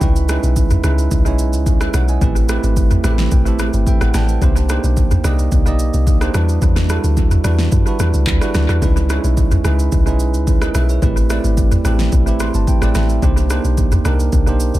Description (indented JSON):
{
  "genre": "amapiano",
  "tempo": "109 BPM",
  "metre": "4/4",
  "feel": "straight",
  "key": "unclear",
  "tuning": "A4 = 441 Hz",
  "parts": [
    { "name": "bell-like tine electric piano", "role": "accompaniment", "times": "0.0-14.8 s", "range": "G3 to C6", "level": "-21 LUFS", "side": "right 4 dB", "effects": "analog delay" },
    { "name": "deep log drum bass", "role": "bass", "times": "0.0-14.8 s", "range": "G1 to F#2", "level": "-16 LUFS", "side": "equal", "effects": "none" },
    { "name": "deep house drum kit", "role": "drums", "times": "0.0-14.8 s", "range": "handclaps, kick drum, rim click, shaker, snare drum, toms", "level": "-17 LUFS", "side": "equal", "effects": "analog delay" }
  ],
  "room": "little or no reverb",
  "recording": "echo-heavy mix",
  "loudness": "-13 LUFS",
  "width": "side -15 dB against mid",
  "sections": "0.0-14.8 A section",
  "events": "tine electric piano fill 2.8-4.4, 12.1-13.2",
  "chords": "0.0 C#m9; 2.2 Am9; 4.4 Cm9; 6.3 Em9; 8.8 C#m9; 11.0 Am9; 13.2 Cm9",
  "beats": "| 0.01 0.56 1.11 1.67 | 2.21 2.77 3.32 3.87 | 4.42 4.97 5.52 6.07 | 6.62 7.17 7.72 8.27 | 8.82 9.37 9.92 10.47 | 11.02 11.57 12.12 12.67 | 13.22 13.78 14.32"
}